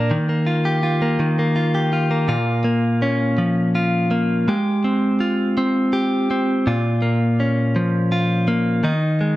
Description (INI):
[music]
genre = pop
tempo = 55 BPM (dotted quarters)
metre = 6/8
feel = straight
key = unclear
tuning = A4 = 441 Hz
[part]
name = direct-recorded clean electric guitar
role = solo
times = 0.0-9.4 s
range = Bb2 to Bb4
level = -17 LUFS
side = equal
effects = spring reverb
[sound]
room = light reverb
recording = dry, close 1970s-style studio recording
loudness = -17 LUFS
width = side -16 dB against mid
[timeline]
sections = 0.0-2.3 A section; 2.3-9.4 B section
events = none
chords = 0.1 Ebadd9; 2.3 Bbm; 4.5 Fmadd9/Ab; 6.7 Bbm; 8.8 Ab5/Eb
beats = | 0.10 1.19 | 2.29 3.38 | 4.47 5.57 | 6.66 7.75 | 8.84